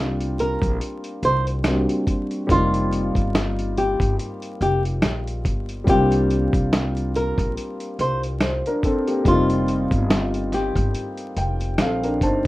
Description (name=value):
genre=lo-fi hip hop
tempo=71 BPM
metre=4/4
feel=swing 56% on 16ths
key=C minor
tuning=A4 = 441 Hz
part: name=flamenco guitar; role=melody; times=0.0-11.8 s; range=F4 to C5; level=-24 LUFS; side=left 1 dB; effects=none
part: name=dark upright piano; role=accompaniment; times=0.0-12.5 s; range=G3 to A5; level=-24 LUFS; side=left 1 dB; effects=none
part: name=upright bass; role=bass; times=0.0-12.5 s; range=F1 to C2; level=-25 LUFS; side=equal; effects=none
part: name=dusty soul sampler-style drum kit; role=drums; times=0.2-12.5 s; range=hi-hat, kick drum, snare drum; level=-23 LUFS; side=equal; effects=none
room=moderate small room reverb, RT60 0.5 s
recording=rough home demo mix, vinyl crackle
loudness=-19 LUFS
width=side -18 dB against mid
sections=0.0-12.5 A section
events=none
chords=0.0 C9sus4; 2.5 F9sus4; 5.9 C9sus4; 9.2 F9sus4